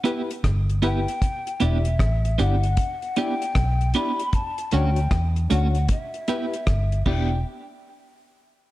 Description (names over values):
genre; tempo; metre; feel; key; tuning
roots reggae; 77 BPM; 4/4; swing 64% on 16ths; E dorian; A4 = 437 Hz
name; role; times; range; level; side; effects
clean electric guitar; accompaniment; 0.0-7.3 s; A3 to G4; -26 LUFS; right 5 dB; tremolo, dub echo
overdriven reed electric piano; stabs; 0.0-7.4 s; D4 to D5; -31 LUFS; left 5 dB; fast tremolo
deep reggae drum kit; drums; 0.1-7.3 s; crash cymbal, hi-hat, kick drum, rim click; -25 LUFS; equal; none
vintage muted fingered electric bass; bass; 0.4-7.4 s; E1 to E2; -21 LUFS; equal; none
breathy mellow jazz flute; melody; 0.8-7.4 s; E5 to B5; -30 LUFS; left 2 dB; dub echo
room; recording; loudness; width
small room ambience; dark, warm production; -20 LUFS; side -16 dB against mid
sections
0.0-7.5 A section; 7.5-8.7 B section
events
none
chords
0.0 G6; 1.2 Em7; 4.3 Dmaj7; 5.9 G6; 7.1 Em7; 7.5 N.C.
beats
0.44 | 1.22 2.00 2.77 3.56 | 4.33 5.11 5.89 6.67